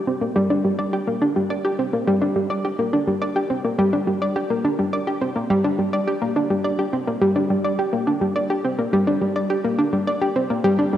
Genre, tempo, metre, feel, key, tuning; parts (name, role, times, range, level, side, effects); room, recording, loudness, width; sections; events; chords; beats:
ambient; 105 BPM; 4/4; straight; G minor; A4 = 440 Hz
analog pluck; solo; 0.0-11.0 s; G3 to D5; -19 LUFS; equal; chorus, analog delay
wet lush hall reverb, RT60 2.3 s; home recording on cassette; -19 LUFS; side -11 dB against mid
0.0-11.0 A section
0.36 | 0.93 1.50 2.08 2.65 | 3.22 3.79 4.36 4.93 | 5.50 6.08 6.65 7.22 | 7.79 8.36 8.93 9.50 | 10.07 10.65